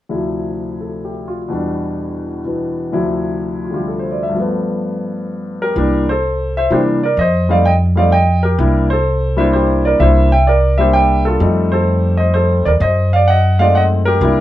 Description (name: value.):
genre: jazz piano trio.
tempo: 127 BPM.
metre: 3/4.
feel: swing 67% on 8ths.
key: C mixolydian.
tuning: A4 = 444 Hz.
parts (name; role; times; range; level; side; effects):
warm grand piano; melody; 0.1-14.4 s; D2 to G5; -15 LUFS; equal; none.
upright bass; bass; 5.8-14.4 s; C2 to C3; -15 LUFS; equal; none.
room: moderate studio reverb, RT60 0.5 s.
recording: band playing live in one room.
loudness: -13 LUFS.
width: side -14 dB against mid.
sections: 0.1-5.8 A section; 5.8-14.4 B section.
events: none.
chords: 0.1 Dm9; 1.5 Em7; 2.9 Dm9; 4.3 G9; 5.8 C7; 7.2 F7(no3); 8.6 C7; 11.4 F7; 12.8 F#dim7.